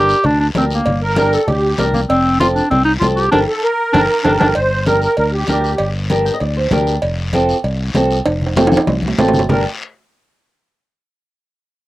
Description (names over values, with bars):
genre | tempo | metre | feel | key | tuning
latin, cumbia | 195 BPM | 4/4 | straight | G minor | A4 = 440 Hz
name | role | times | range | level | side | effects
bright clarinet | melody | 0.0-4.5 s | Bb3 to G4 | -14 LUFS | equal | cassette tape
flamenco guitar | accompaniment | 0.0-9.6 s | C4 to G5 | -17 LUFS | equal | cassette tape
fingered electric bass | bass | 0.0-9.6 s | F1 to D2 | -20 LUFS | equal | none
guiro | percussion | 0.1-9.6 s | none | -29 LUFS | left 4 dB | none
congas | percussion | 0.2-9.6 s | none | -21 LUFS | left 2 dB | none
cowbell and timbales | percussion | 0.2-9.6 s | none | -21 LUFS | right 2 dB | none
musette accordion | second line | 1.0-5.9, 9.5-9.6 s | G4 to C5 | -17 LUFS | right 1 dB | cassette tape
room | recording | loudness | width
moderate booth ambience, RT60 0.2 s | home recording on cassette | -13 LUFS | side -16 dB against mid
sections
0.0-4.6 A section; 4.6-9.5 B section; 9.5-10.7 C section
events
band accent 3.3-4.6; drum fill 4.1-4.6, 8.3-9.5; nylon-string guitar fill 6.1-7.0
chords
0.0 Gm; 2.1 F; 3.3 Gmadd9; 4.6 Gm; 7.0 F; 9.5 Gm